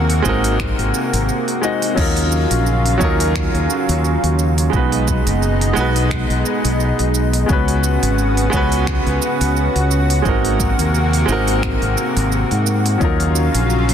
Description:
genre	sunset chillout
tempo	87 BPM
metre	4/4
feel	swing 55% on 16ths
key	unclear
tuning	A4 = 441 Hz
part	bright baby grand piano	accompaniment	0.0-13.9 s	Gb3 to Eb5	-21 LUFS	moving between left 4 dB and right 6 dB	auto-pan, ping-pong delay
part	lush unison pad	sustained chords	0.0-13.9 s	B2 to Gb4	-20 LUFS	equal	chorus
part	modern bright fingered electric bass	bass	0.0-13.9 s	F#1 to Ab2	-18 LUFS	equal	none
part	deep house drum kit	drums	0.1-13.9 s	crash cymbal, finger snaps, hi-hat, shaker	-26 LUFS	right 4 dB	soft clipping on snare
part	electronic kick drum	drums	0.3-13.2 s	none	-22 LUFS	equal	none
room	light reverb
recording	dense, heavily limited modern master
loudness	-14 LUFS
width	side -8 dB against mid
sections	0.0-13.9 A section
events	none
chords	0.0 Ab9; 2.0 Ebm9; 4.7 B6; 7.5 Db7sus4; 10.3 Ab9; 13.0 Ebm9

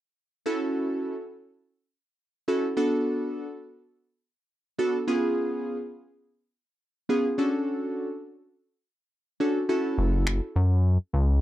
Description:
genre	dance-pop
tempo	104 BPM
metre	4/4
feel	straight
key	F# minor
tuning	A4 = 437 Hz
part	glassy digital keys	accompaniment	0.5-10.4 s	B3 to A4	-26 LUFS	equal	chorus
part	chorused synth bass	bass	10.0-11.4 s	F#1 to F#2	-21 LUFS	equal	none
part	electronic finger snaps	drums	10.3-10.4 s	none	-30 LUFS	left 1 dB	overdrive
room	light reverb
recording	dry, close 1970s-style studio recording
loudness	-24 LUFS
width	side -14 dB against mid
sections	0.5-11.4 A section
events	none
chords	0.5 F#m7; 2.8 Bm7; 5.1 C#7; 7.4 Dmaj7; 9.7 F#m7

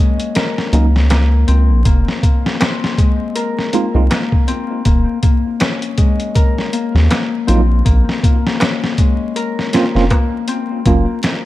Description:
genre	trip hop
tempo	80 BPM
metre	4/4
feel	swing 58% on 16ths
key	Bb minor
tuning	A4 = 440 Hz
part	Celtic harp	arpeggios	0.0-11.5 s	Ab3 to Bb4	-20 LUFS	left 5 dB	tape echo
part	boom bap sampler-style drum kit	drums	0.2-11.4 s	hi-hat, kick drum, snare drum	-15 LUFS	equal	vintage 12-bit sampler grit, small room reverb
part	tine electric piano	accompaniment	0.7-11.1 s	Gb3 to F4	-20 LUFS	right 4 dB	medium stereo tremolo, vintage 12-bit sampler grit, tape echo
part	round analog bass	bass	0.7-11.0 s	Eb1 to Eb2	-12 LUFS	equal	none
part	darbuka	percussion	1.1-10.3 s	none	-25 LUFS	right 2 dB	none
room	light reverb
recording	dark, warm production, vinyl crackle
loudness	-12 LUFS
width	side -16 dB against mid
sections	0.0-11.5 A section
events	none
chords	0.0 Gb (rootless); 1.9 Fm; 4.9 Eb5; 7.9 Bbmadd9; 10.9 Gbmaj7

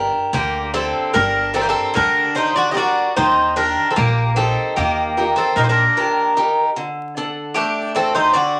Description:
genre	greek folk, Greek bouzouki band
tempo	150 BPM (eighths)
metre	9/8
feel	straight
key	unclear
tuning	A4 = 440 Hz
part	picked acoustic archtop guitar	accompaniment	0.0-8.6 s	D3 to F#5	-23 LUFS	equal	none
part	upright bass	bass	0.0-5.8 s	G1 to Eb2	-26 LUFS	equal	none
part	Greek bouzouki	melody	0.3-8.6 s	G4 to Eb5	-21 LUFS	equal	none
part	Greek bouzouki	second line	0.3-8.6 s	Bb3 to G4	-24 LUFS	equal	none
room	wet studio reverb, RT60 0.5 s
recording	vinyl crackle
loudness	-18 LUFS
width	mono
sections	0.0-8.6 A section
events	speeding up 0.0-8.6; break 6.8-8.6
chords	0.0 Gm; 3.2 Eb; 6.8 D

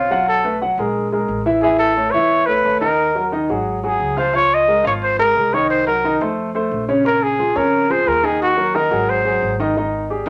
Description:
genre	Afro-Cuban jazz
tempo	177 BPM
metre	4/4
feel	straight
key	Db major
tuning	A4 = 440 Hz
part	breathy trumpet	melody	0.0-9.6 s	F4 to Eb5	-19 LUFS	equal	none
part	warm concert grand piano	accompaniment	0.0-10.3 s	Db3 to Gb5	-21 LUFS	equal	none
part	upright bass	bass	0.0-10.3 s	Ab1 to F2	-32 LUFS	equal	none
room	wet small room reverb, RT60 0.5 s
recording	none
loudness	-17 LUFS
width	mono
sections	0.0-9.8 A section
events	none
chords	0.3 Cb5; 0.9 Eadd11; 1.6 A; 3.0 Ebm; 3.7 Dbadd11/Ab; 4.3 Db6; 5.7 Cm7b5; 6.4 F; 7.1 Bbm7; 8.4 Ebm; 9.1 Ab7; 9.8 Ab5

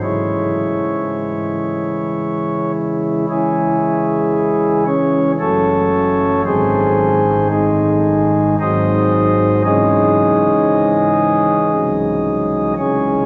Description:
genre	classical, chorale-style piece for pipe organ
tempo	57 BPM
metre	3/4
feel	straight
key	C# minor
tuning	A4 = 439 Hz
part	pipe organ, flutes	solo	0.0-13.3 s	F#1 to D#5	-16 LUFS	equal	none
room	wet cathedral reverb, RT60 6.7 s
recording	nothing above 7.6 kHz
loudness	-16 LUFS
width	mono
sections	0.0-3.3 A section; 3.3-13.3 B section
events	none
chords	0.0 C#m; 5.4 F#m; 6.5 G#; 8.6 G#7; 9.6 C#m; 11.7 G#7/B#

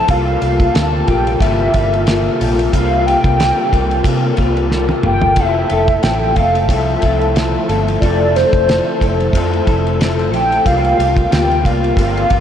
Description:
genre	indie pop, bedroom pop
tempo	91 BPM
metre	4/4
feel	swing 55% on 16ths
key	F major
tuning	A4 = 440 Hz
part	hollow clarinet-like synth lead	melody	0.0-12.4 s	C5 to A5	-17 LUFS	equal	analog chorus, diffuse ambient delay
part	electric guitar through a small old amp	accompaniment	0.0-12.4 s	C3 to A4	-18 LUFS	left 3 dB	ensemble chorus, warbly pitch drift
part	warbly tape-like pad	sustained chords	0.0-12.4 s	C3 to A4	-23 LUFS	right 1 dB	chorus, built-in reverb
part	vintage muted fingered electric bass	bass	0.1-12.4 s	F1 to C3	-18 LUFS	right 1 dB	none
part	cloth-damped thuddy drum kit	drums	0.1-12.4 s	hi-hat, kick drum, ride cymbal, snare drum, toms	-19 LUFS	equal	none
room	wet cathedral reverb, RT60 5.8 s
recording	dreamy mix soaked in reverb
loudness	-12 LUFS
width	side -9 dB against mid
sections	0.0-12.4 A section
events	drum fill 4.7-5.4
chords	0.1 C7sus4; 5.4 Fmaj7; 10.7 C7sus4

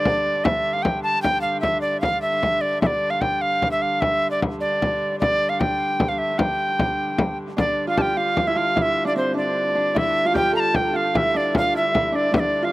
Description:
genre	medieval dance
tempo	101 BPM (dotted quarters)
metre	6/8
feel	straight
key	unclear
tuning	A4 = 440 Hz
part	reedy soprano recorder	melody	0.0-12.7 s	C5 to Bb5	-21 LUFS	equal	slapback echo
part	rich hurdy-gurdy	drone	0.0-12.7 s	G2 to D3	-30 LUFS	equal	none
part	frame drum	percussion	0.1-12.5 s	none	-23 LUFS	left 2 dB	none
part	Celtic harp	second line	7.6-12.7 s	C4 to A4	-24 LUFS	right 2 dB	slapback echo
room	little or no reverb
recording	recorded outdoors, with no room sound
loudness	-19 LUFS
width	side -17 dB against mid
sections	0.0-7.6 A section; 7.6-12.7 A section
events	none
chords	none

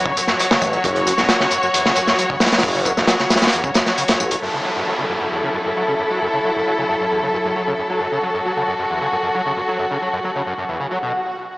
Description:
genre	breakbeat, breaks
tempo	134 BPM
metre	4/4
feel	straight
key	F# minor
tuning	A4 = 440 Hz
part	clear studio string section	sustained chords	0.0-11.1 s	F#3 to C#5	-20 LUFS	equal	sidechain pumping
part	screaming distorted acid line	riff	0.0-11.1 s	E2 to F#3	-25 LUFS	equal	distortion, ensemble chorus, digital delay
part	crunchy breakbeat drum kit	drums	0.1-4.4 s	hi-hat, kick drum, snare drum	-17 LUFS	equal	none
part	tambourine	drums	0.2-4.4 s	none	-28 LUFS	left 2 dB	none
part	phased detuned saw bass	bass	0.6-4.4 s	E1 to A1	-22 LUFS	equal	phaser
part	downlifter and swell	sound effects	4.4-11.6 s	none	-26 LUFS	equal	none
room	wet lush hall reverb, RT60 1.6 s, small room ambience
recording	small speaker sound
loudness	-16 LUFS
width	side -21 dB against mid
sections	0.0-4.4 A section; 4.4-11.6 B section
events	swell 10.8-11.6; stop 11.1-11.6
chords	0.0 F#5; 4.4 F#m7

